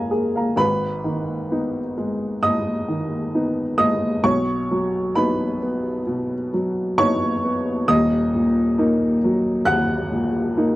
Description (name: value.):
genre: neoclassical minimalist piano.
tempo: 66 BPM.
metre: 4/4.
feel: rubato.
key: G# minor.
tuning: A4 = 441 Hz.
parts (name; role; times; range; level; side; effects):
warm upright piano; solo; 0.0-10.8 s; D#1 to F#6; -19 LUFS; equal; none.
room: little or no reverb.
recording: dry, close 1970s-style studio recording.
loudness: -19 LUFS.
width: side -17 dB against mid.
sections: 0.6-10.8 A section.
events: none.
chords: 0.0 C#6; 0.6 G#m; 4.2 B; 7.9 D#m.